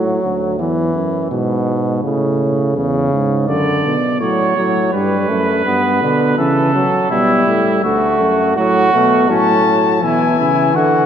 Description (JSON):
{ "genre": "classical, imitative canzona for brass ensemble", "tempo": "83 BPM", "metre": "4/4", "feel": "straight", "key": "D major", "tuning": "A4 = 441 Hz", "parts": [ { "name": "bright trombone", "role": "accompaniment", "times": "0.0-11.1 s", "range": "B2 to B3", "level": "-17 LUFS", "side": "left 1 dB", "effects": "none" }, { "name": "dark euphonium", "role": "bass", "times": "0.0-11.1 s", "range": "D2 to D3", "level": "-18 LUFS", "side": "right 2 dB", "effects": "none" }, { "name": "warm trumpet", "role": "second line", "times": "3.5-11.1 s", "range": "C#4 to D5", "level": "-17 LUFS", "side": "right 3 dB", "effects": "none" }, { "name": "mellow cornet", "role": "melody", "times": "9.3-11.1 s", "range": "F#5 to A5", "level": "-16 LUFS", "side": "left 10 dB", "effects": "none" } ], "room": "wet church reverb, RT60 3.0 s", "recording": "none", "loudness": "-13 LUFS", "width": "side -8 dB against mid", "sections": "0.0-11.1 A section", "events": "none", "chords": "0.0 D; 0.6 E; 2.0 A; 3.5 D/F#; 4.9 G; 6.4 A/C#; 7.8 D; 9.3 A" }